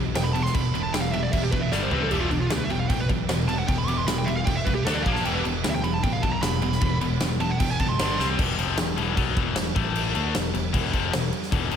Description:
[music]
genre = heavy metal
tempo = 153 BPM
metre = 4/4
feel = straight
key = E phrygian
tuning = A4 = 444 Hz
[part]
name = distorted electric guitar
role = riff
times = 0.0-11.8 s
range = E2 to D4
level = -28 LUFS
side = left 8 dB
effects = overdrive, slapback echo
[part]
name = heavy high-gain guitar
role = riff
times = 0.0-8.4 s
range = E2 to D4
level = -30 LUFS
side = right 8 dB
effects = distortion
[part]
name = picked electric bass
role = bass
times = 0.0-11.8 s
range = E1 to D2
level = -30 LUFS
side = equal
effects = none
[part]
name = high-gain lead guitar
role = melody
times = 0.2-8.3 s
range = D4 to D6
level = -30 LUFS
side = right 2 dB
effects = distortion
[part]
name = big rock drum kit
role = drums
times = 0.2-11.8 s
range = crash cymbal, kick drum, snare drum, toms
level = -26 LUFS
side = right 1 dB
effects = none
[sound]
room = light reverb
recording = none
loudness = -22 LUFS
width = side -8 dB against mid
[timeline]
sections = 0.0-8.4 A section; 8.4-11.8 B section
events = lead electric guitar solo 0.0-8.4; drum fill 1.7-2.1, 8.2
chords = 0.0 E5; 1.7 G5; 1.9 C5; 2.1 E5; 4.9 D5; 5.1 A#5; 5.3 E5; 8.0 G5; 8.2 C5; 8.4 E5; 9.8 A5; 10.2 E5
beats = 0.15 | 0.54 0.94 1.33 1.72 | 2.12 2.51 2.90 3.29 | 3.69 4.08 4.47 4.86 | 5.25 5.64 6.04 6.43 | 6.82 7.21 7.60 8.00 | 8.39 8.78 9.17 9.56 | 9.95 10.35 10.74 11.13 | 11.52

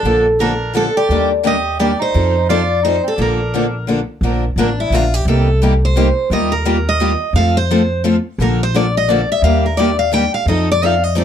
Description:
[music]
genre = acoustic string swing (jazz manouche)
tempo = 173 BPM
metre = 3/4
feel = swing 60% on 8ths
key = Bb major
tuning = A4 = 439 Hz
[part]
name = picked steel-string acoustic guitar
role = melody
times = 0.0-11.2 s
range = D4 to G5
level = -17 LUFS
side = left 1 dB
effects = none
[part]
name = breathy soprano saxophone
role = second line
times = 0.0-3.8 s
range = C4 to G4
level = -23 LUFS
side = right 7 dB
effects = none
[part]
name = picked steel-string acoustic guitar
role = accompaniment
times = 0.0-11.2 s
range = C3 to Bb4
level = -19 LUFS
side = left 4 dB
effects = none
[part]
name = picked steel-string acoustic guitar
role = accompaniment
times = 0.0-11.2 s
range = C3 to Bb4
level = -23 LUFS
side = right 5 dB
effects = none
[part]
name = upright bass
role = bass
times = 0.0-11.2 s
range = A1 to F2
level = -18 LUFS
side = equal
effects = none
[sound]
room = moderate small room reverb, RT60 0.5 s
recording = dark, warm production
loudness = -13 LUFS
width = side -9 dB against mid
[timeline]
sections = 0.0-4.2 A section; 4.2-11.2 B section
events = steel-string acoustic guitar solo 4.2-11.2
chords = 0.1 Bbmaj7; 1.1 Ebmaj7; 2.1 F7; 3.2 Bbmaj7; 4.2 Bb; 5.3 Cm7; 6.3 Ebadd9; 7.3 F; 8.4 Bbmaj7; 9.4 Ebmaj7; 10.5 F7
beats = | 0.06 0.40 0.75 | 1.10 1.45 1.79 | 2.14 2.49 2.83 | 3.18 3.53 3.88 | 4.22 4.57 4.92 | 5.26 5.61 5.96 | 6.31 6.65 7.00 | 7.35 7.69 8.04 | 8.39 8.74 9.08 | 9.43 9.78 10.13 | 10.47 10.82 11.17

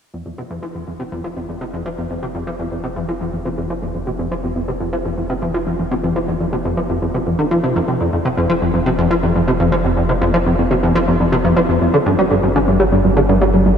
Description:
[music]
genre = ambient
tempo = 122 BPM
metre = 4/4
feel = straight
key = unclear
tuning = A4 = 436 Hz
[part]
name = plucky analog bass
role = riff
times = 0.1-13.7 s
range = F2 to G3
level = -16 LUFS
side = equal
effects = lush chorus, tape echo
[part]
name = warm sub bass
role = bass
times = 0.1-13.8 s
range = F1 to G1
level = -25 LUFS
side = equal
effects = none
[sound]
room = wet cathedral reverb, RT60 5.7 s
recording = in a vast, echoing space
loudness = -15 LUFS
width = side -8 dB against mid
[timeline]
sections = 0.1-13.8 A section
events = fade-in on analog synth bass 0.1-13.8; fade-in on sub bass 0.1-13.8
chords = 0.1 F5; 11.9 G5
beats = | 0.13 0.63 1.12 1.61 | 2.10 2.59 3.08 3.58 | 4.07 4.56 5.05 5.54 | 6.04 6.53 7.02 7.51 | 8.00 8.49 8.99 9.48 | 9.97 10.46 10.95 11.45 | 11.94 12.43 12.92 13.41

